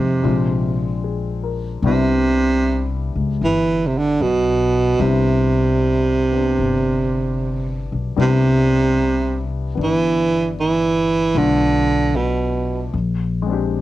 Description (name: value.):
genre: jazz ballad.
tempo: 76 BPM.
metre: 4/4.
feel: swing 68% on 8ths.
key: C major.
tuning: A4 = 440 Hz.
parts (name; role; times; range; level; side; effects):
warm baritone saxophone; melody; 0.0-12.9 s; B2 to E3; -17 LUFS; right 2 dB; cassette tape.
warm grand piano; accompaniment; 0.0-13.8 s; G3 to Bb4; -28 LUFS; left 8 dB; cassette tape.
upright bass; bass; 0.0-13.8 s; G1 to F2; -22 LUFS; left 2 dB; none.
room: light reverb.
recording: home recording on cassette.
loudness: -16 LUFS.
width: side -15 dB against mid.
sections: 0.0-8.2 A section; 8.2-13.8 A section.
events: none.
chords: 0.2 Bb9; 1.8 Cmaj9; 11.3 Bm7b5; 12.9 Bb13.